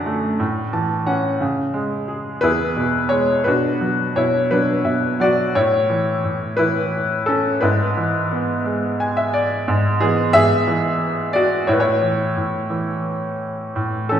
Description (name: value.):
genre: classical, lyrical solo piano.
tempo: 58 BPM (dotted quarters).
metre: 6/8.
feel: rubato.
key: unclear.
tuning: A4 = 439 Hz.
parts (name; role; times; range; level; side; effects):
bright baby grand piano; solo; 0.0-14.2 s; E2 to A5; -17 LUFS; equal; none.
room: wet recital hall reverb, RT60 1.5 s.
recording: recorded in a church or concert hall.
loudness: -17 LUFS.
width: side -9 dB against mid.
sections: 0.0-5.6 A section; 5.6-14.2 B section.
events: grand piano fill 0.4-1.4, 4.5-5.6, 8.7-9.7.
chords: 0.4 A; 1.4 C#5; 2.4 E; 3.5 Bm; 5.6 A; 7.6 E/G#; 9.7 E9/G#; 11.7 A.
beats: 0.41 | 1.42 2.43 | 3.46 4.51 | 5.55 6.58 | 7.62 8.66 | 9.68 10.67 | 11.68 12.71 | 13.76.